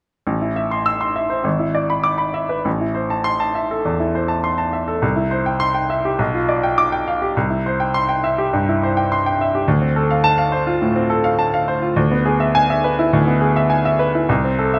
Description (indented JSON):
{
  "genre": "classical, virtuoso piano study",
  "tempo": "103 BPM",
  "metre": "4/4",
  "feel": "rubato",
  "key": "A minor",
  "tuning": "A4 = 441 Hz",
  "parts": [
    { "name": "clear grand piano", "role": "solo", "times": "0.3-14.8 s", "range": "G#1 to E6", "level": "-18 LUFS", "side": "equal", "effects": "none" }
  ],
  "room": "light reverb",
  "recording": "close, detailed microphones",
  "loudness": "-18 LUFS",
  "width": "mono",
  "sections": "0.3-14.8 A section",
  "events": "none",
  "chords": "0.3 Am; 1.5 E7/G#; 2.7 Am; 5.0 C; 6.2 G7/B; 7.3 C; 9.7 Dm7; 12.0 E7/D; 14.3 Am/C"
}